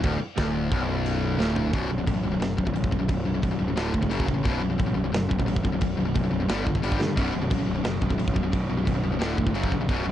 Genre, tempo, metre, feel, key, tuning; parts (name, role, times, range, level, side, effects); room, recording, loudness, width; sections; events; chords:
heavy metal; 177 BPM; 4/4; straight; B minor; A4 = 442 Hz
crunchy overdriven guitar; riff; 0.0-1.7, 7.2-10.1 s; B1 to F#3; -33 LUFS; right 3 dB
distorted electric guitar; riff; 0.0-10.1 s; B1 to G3; -27 LUFS; left 5 dB; overdrive
tight distorted guitar; riff; 0.0-10.1 s; B1 to G3; -32 LUFS; right 12 dB; distortion
fuzz picked electric bass; bass; 0.0-10.1 s; B0 to G2; -29 LUFS; right 1 dB; overdrive, transformer saturation
tight metal drum kit; drums; 0.0-10.0 s; crash cymbal, kick drum, snare drum, toms; -29 LUFS; right 1 dB; vintage 12-bit sampler grit
little or no reverb; dry, gritty hardware recording, nothing above 10.5 kHz; -23 LUFS; side -11 dB against mid
0.0-1.7 A section; 1.7-10.1 B section
half time 0.0-1.7; drum fill 1.4-1.7, 7.0
0.0 Bm; 1.7 B5; 3.8 D5; 4.1 F#5; 4.5 B5; 6.5 G5; 7.2 B5; 9.2 D5; 9.5 F#5